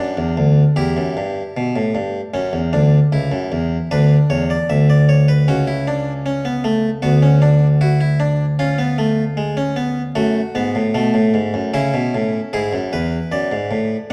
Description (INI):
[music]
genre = classical, baroque-style 4-part fugue for harpsichord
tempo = 76 BPM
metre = 4/4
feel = straight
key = B minor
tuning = A4 = 440 Hz
[part]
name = harpsichord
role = solo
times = 0.0-14.1 s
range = C#2 to E5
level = -17 LUFS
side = equal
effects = none
[sound]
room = moderate recital hall reverb, RT60 1.4 s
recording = dark, warm production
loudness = -17 LUFS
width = mono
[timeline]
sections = 0.0-11.7 A section; 11.7-14.1 B section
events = none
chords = 0.0 Bm (rootless); 0.8 Em; 2.3 F#5; 3.9 Bm/D; 5.5 F#m/C# (rootless); 7.0 Bm/D; 8.6 C#; 10.2 F#m; 11.7 C#m; 13.3 Bm/F#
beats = 0.77 1.56 | 2.34 3.12 3.91 4.69 | 5.47 6.25 7.02 7.80 | 8.58 9.37 10.15 10.94 | 11.73 12.53 13.32 14.10